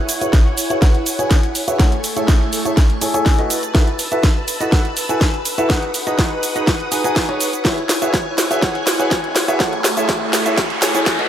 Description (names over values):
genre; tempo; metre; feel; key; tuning
piano house; 123 BPM; 4/4; straight; E major; A4 = 440 Hz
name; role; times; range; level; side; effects
string machine, violins; sustained chords; 0.0-11.3 s; A3 to F#6; -24 LUFS; equal; ensemble chorus, sidechain pumping
house drum kit; drums; 0.1-11.3 s; hi-hat, shaker, snare drum; -20 LUFS; equal; none
clear concert grand piano; riff; 0.2-11.3 s; D#4 to G#5; -21 LUFS; equal; sidechain pumping, low-pass filter, analog delay
electronic kick drum; drums; 0.3-11.2 s; none; -15 LUFS; equal; none
riser; sound effects; 8.6-11.3 s; none; -24 LUFS; right 1 dB; none
room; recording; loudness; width
moderate plate reverb, RT60 1.9 s, digital ambience; dreamy mix soaked in reverb, high-pass filter; -14 LUFS; side -10 dB against mid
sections
0.0-11.3 A section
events
build-up 0.0-11.3; drum fill 0.0-11.3; filter sweep on grand piano 0.0-11.3; filter sweep on string machine 0.0-11.3; filter sweep 0.0-11.3; riser 8.6-11.3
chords
0.0 E69; 1.8 Amaj7; 3.5 B7sus4; 5.7 G#m7; 7.6 E69; 9.6 Amaj7